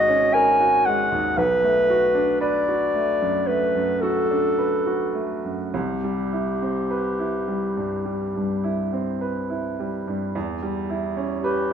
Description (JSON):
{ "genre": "classical, impressionist duo for clarinet and grand piano", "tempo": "50-58 BPM", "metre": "4/4", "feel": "rubato", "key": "unclear", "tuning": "A4 = 439 Hz", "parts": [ { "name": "dark clarinet", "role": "melody", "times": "0.0-11.7 s", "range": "G4 to G#5", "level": "-21 LUFS", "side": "left 1 dB", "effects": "none" }, { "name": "clear baby grand piano", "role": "accompaniment", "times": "0.0-11.7 s", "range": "G#1 to B4", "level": "-24 LUFS", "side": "right 2 dB", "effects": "none" } ], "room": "moderate recital hall reverb, RT60 1.5 s", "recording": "minimal, uncompressed stereo recording", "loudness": "-20 LUFS", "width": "side -8 dB against mid", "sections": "0.0-10.4 A section; 10.4-11.7 B section", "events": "none", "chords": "0.0 G#9sus4; 1.4 Bm7; 5.7 Cmaj7; 10.4 Em6" }